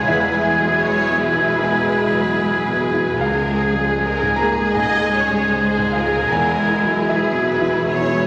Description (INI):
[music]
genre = cinematic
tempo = 77 BPM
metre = 4/4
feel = rubato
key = unclear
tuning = A4 = 440 Hz
[part]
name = rich symphonic violin section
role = melody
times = 0.0-8.3 s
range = Ab4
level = -31 LUFS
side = equal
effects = none
[part]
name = clear symphonic violin section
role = second line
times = 0.0-8.3 s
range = G#4 to Eb5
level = -29 LUFS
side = equal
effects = none
[part]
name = mellow clarinet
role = second line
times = 0.0-8.3 s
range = G#4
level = -33 LUFS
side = equal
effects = none
[part]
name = mellow hollow silver concert flute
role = second line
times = 0.0-8.3 s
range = Ab6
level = -23 LUFS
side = equal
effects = none
[part]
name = warm grand piano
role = accompaniment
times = 0.0-8.3 s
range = Db2 to Bb5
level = -24 LUFS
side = equal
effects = none
[part]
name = warm symphonic viola section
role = accompaniment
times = 0.0-8.3 s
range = Ab3 to Ab4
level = -27 LUFS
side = equal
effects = none
[part]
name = mellow French horn section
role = sustained chords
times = 0.0-8.3 s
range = E3 to Bb3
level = -28 LUFS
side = equal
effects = none
[part]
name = dark symphonic cello section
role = bass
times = 0.0-8.3 s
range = Db2 to E2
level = -32 LUFS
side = equal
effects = none
[part]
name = warm studio double bass section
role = bass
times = 0.0-8.3 s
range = E1 to Db2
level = -35 LUFS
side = equal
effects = none
[sound]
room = wet scoring stage reverb, RT60 1.9 s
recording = none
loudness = -18 LUFS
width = mono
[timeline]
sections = 0.0-8.3 A section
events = none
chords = 0.1 E; 3.2 Db; 6.3 E